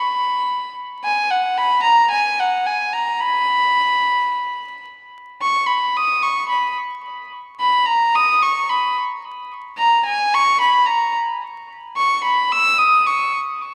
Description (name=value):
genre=rock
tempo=110 BPM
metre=4/4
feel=straight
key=B major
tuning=A4 = 440 Hz
part: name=warm violin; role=melody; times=0.0-13.3 s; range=F#5 to E6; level=-18 LUFS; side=equal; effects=analog delay
room=wet large studio reverb, RT60 1.1 s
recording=band playing live in one room, vinyl crackle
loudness=-18 LUFS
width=mono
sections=0.0-5.4 A section; 5.4-13.7 B section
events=build-up 5.4-13.7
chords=none